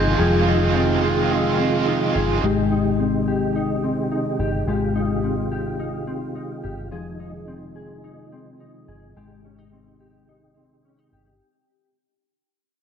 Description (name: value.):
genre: dream pop.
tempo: 107 BPM.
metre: 4/4.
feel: straight.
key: Ab major.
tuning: A4 = 440 Hz.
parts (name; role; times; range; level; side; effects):
overdriven electric guitar; accompaniment; 0.0-2.4 s; F2 to F4; -24 LUFS; right 5 dB; tremolo, wide subtle chorus.
mellow tonewheel organ; sustained chords; 0.0-11.4 s; C3 to G4; -25 LUFS; right 3 dB; chorus vibrato, fast rotary speaker.
mellow electric guitar; arpeggios; 0.0-12.0 s; F3 to C5; -24 LUFS; left 4 dB; ensemble chorus, tape echo.
vintage muted fingered electric bass; bass; 0.0-11.4 s; F1 to Ab1; -26 LUFS; equal; none.
glockenspiel with hard plastic mallets; texture; 0.0-0.7 s; G6; -35 LUFS; right 1 dB; none.
room: moderate plate reverb, RT60 2.6 s.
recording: lossy compression artefacts.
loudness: -19 LUFS.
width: side -8 dB against mid.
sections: 0.0-11.4 A section.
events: fade-out 0.0-11.4.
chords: 0.0 Fm7; 2.4 Abmaj7; 6.9 Fm7; 9.2 Abmaj7.